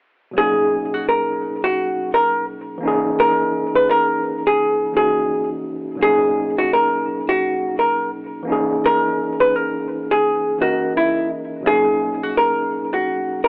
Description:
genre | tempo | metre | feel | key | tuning
hip hop | 85 BPM | 4/4 | swing 58% on 16ths | unclear | A4 = 444 Hz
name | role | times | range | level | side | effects
mellow tine electric piano | accompaniment | 0.3-13.5 s | B2 to D#5 | -25 LUFS | equal | overdrive, cassette tape, plate reverb
archtop guitar, miked and amplified | melody | 0.4-13.5 s | E4 to B4 | -20 LUFS | equal | none
room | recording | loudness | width
moderate studio reverb, RT60 0.6 s | worn, warbling old tape, cassette tape, warbly pitch drift, telephone sound | -19 LUFS | mono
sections
0.4-13.5 A section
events
none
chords
0.4 Bmaj13; 2.8 C#m69; 6.0 Bmaj13; 8.5 C#m69; 11.6 Bmaj13

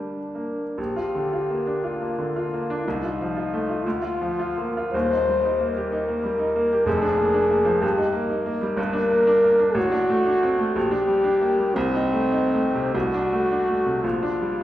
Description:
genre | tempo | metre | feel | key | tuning
classical, romantic duo for French horn and grand piano | 42-64 BPM (dotted quarters) | 6/8 | rubato | Bb major, G minor from 8.8 s | A4 = 440 Hz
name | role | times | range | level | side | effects
warm French horn | melody | 0.0-14.6 s | C4 to C5 | -22 LUFS | left 1 dB | none
bright grand piano | accompaniment | 0.0-14.6 s | Eb1 to G4 | -25 LUFS | right 1 dB | none
room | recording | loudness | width
wet recital hall reverb, RT60 1.4 s | heard from further back in the room | -20 LUFS | side -13 dB against mid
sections
0.8-14.6 A section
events
none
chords
0.0 Gm; 0.8 Bb; 2.9 F7/C; 3.8 Bb/D; 4.9 Eb; 6.9 Bb7/F; 7.8 Eb/G; 8.8 Gm; 9.8 D7/A; 10.8 Gm/Bb; 11.8 Adim/C; 12.9 D7/C; 14.0 Gm/Bb

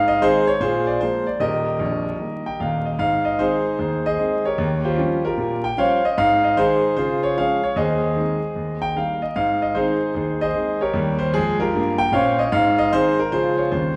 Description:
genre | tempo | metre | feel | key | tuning
jazz, stride piano | 151 BPM | 4/4 | swing 66% on 8ths | Ab major | A4 = 440 Hz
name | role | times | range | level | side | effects
clear concert grand piano | solo | 0.0-14.0 s | Bb0 to G5 | -20 LUFS | equal | none
room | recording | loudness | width
wet scoring stage reverb, RT60 1.6 s | recorded in a church or concert hall, vinyl crackle | -21 LUFS | mono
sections
0.0-3.0 A section; 3.0-14.0 A section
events
none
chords
0.0 Ab; 0.6 Bb5; 1.4 Eb; 3.0 Ab; 4.6 Eb13; 6.2 Ab; 7.0 Db; 7.8 Ab/Eb; 8.6 Eb; 12.5 Ab; 13.3 Db

